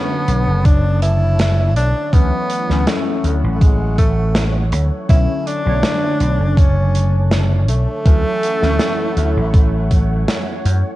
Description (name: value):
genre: vaporwave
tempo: 81 BPM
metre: 4/4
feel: swing 54% on 16ths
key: D major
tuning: A4 = 440 Hz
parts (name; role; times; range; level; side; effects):
- warm tenor saxophone; melody; 0.0-10.6 s; G#3 to E4; -22 LUFS; equal; vintage 12-bit sampler grit, tape echo
- warbly lo-fi synth keys; accompaniment; 0.0-11.0 s; D3 to C#5; -25 LUFS; left 1 dB; lush chorus, tape echo
- soft string machine; sustained chords; 0.0-11.0 s; D3 to A5; -28 LUFS; right 1 dB; phaser, ensemble chorus, vintage 12-bit sampler grit
- vintage slap bass; bass; 0.3-10.8 s; F#1 to F#2; -16 LUFS; equal; none
- modern studio drum kit; drums; 0.3-10.8 s; hi-hat, snare drum; -22 LUFS; right 1 dB; vintage 12-bit sampler grit, gated reverb
- electronic kick drum; drums; 0.6-10.1 s; none; -12 LUFS; equal; vintage 12-bit sampler grit
room: light reverb, small room ambience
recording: cassette tape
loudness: -13 LUFS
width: side -16 dB against mid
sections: 0.0-11.0 A section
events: none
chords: 0.0 Bm9; 2.1 Dmaj9; 5.1 Bm9; 8.1 Dmaj9